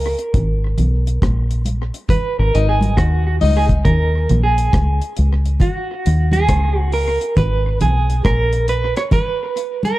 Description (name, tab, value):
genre	roots reggae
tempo	68 BPM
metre	4/4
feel	swing 64% on 16ths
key	unclear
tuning	A4 = 441 Hz
part	clean electric guitar	accompaniment	0.0-10.0 s	Gb4 to Db5	-21 LUFS	right 3 dB	tremolo, tape echo
part	deep dub fingered electric bass	bass	0.0-8.9 s	Ab1 to Eb2	-16 LUFS	equal	none
part	deep reggae drum kit	drums	0.2-10.0 s	hi-hat, kick drum, rim click	-19 LUFS	equal	tape echo
part	congas	percussion	0.3-10.0 s	none	-23 LUFS	right 1 dB	none
part	raspy tenor saxophone	second line	2.5-3.7 s	Eb4	-23 LUFS	left 7 dB	tape echo
room	light reverb, small room ambience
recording	dark, warm production, lossy compression artefacts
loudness	-14 LUFS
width	side -17 dB against mid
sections	0.0-10.0 A section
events	clean electric guitar solo 0.0-10.0; band accent 0.3-3.9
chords	0.3 Abm; 3.9 Eb5; 7.4 Abm